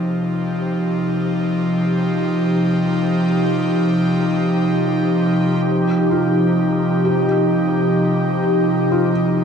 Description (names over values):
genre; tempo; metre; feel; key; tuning
ambient; free time; none; none; Eb major; A4 = 440 Hz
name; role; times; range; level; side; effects
airy breathy pad; sustained chords; 0.0-9.4 s; C3 to G4; -16 LUFS; equal; chorus
felt-muted upright piano; arpeggios; 6.1-9.4 s; F4 to G4; -25 LUFS; left 2 dB; analog delay
room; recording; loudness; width
wet echo chamber reverb, RT60 2.2 s; echo-heavy mix, cassette tape; -16 LUFS; side -6 dB against mid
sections
0.0-5.6 A section; 5.6-9.4 B section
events
none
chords
0.0 Eb69